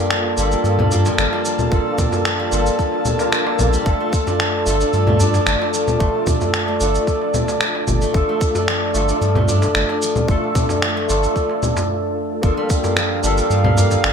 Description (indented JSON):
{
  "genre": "organic downtempo",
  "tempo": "112 BPM",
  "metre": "4/4",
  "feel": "straight",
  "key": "G minor",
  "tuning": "A4 = 441 Hz",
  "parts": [
    { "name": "barky tine electric piano", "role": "accompaniment", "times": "0.0-14.1 s", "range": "A3 to Bb4", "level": "-21 LUFS", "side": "equal", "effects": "overdrive, ensemble chorus, sidechain pumping, ping-pong delay" },
    { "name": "airy breathy pad", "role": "sustained chords", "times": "0.0-14.1 s", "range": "Bb3 to A5", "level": "-27 LUFS", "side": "right 2 dB", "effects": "chorus, sidechain pumping" },
    { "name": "steel-string zither", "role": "arpeggios", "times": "0.0-14.1 s", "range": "F3 to D4", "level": "-23 LUFS", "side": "left 1 dB", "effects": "ping-pong delay" },
    { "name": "electronic finger snaps, cabasa and congas", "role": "drums", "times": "0.1-14.1 s", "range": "none", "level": "-22 LUFS", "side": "equal", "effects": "gated reverb" },
    { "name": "warm sub bass", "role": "bass", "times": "0.4-14.1 s", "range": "G1 to G2", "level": "-19 LUFS", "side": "equal", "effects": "sidechain pumping" },
    { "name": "darbuka", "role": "percussion", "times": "0.8-14.0 s", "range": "none", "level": "-27 LUFS", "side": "equal", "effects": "none" },
    { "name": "electronic kick drum", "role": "drums", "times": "1.7-12.8 s", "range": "none", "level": "-20 LUFS", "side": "equal", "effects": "none" },
    { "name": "drifting glass-harmonics texture", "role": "texture", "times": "12.7-14.1 s", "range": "F5", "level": "-28 LUFS", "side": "right 4 dB", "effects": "chorus, built-in reverb" }
  ],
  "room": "moderate plate reverb, RT60 1.4 s",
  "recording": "bright 1980s-style digital production",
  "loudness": "-15 LUFS",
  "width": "side -7 dB against mid",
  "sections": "0.0-12.4 A section; 12.4-14.1 B section",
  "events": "stop 11.9-12.4",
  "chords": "0.0 Gm7",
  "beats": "0.11 0.65 1.18 | 1.72 2.25 2.79 3.33 | 3.86 4.40 4.93 5.47 | 6.00 6.54 7.08 7.61 | 8.15 8.68 9.22 9.75 | 10.29 10.83 11.36 11.90 | 12.43 12.97 13.50 14.04"
}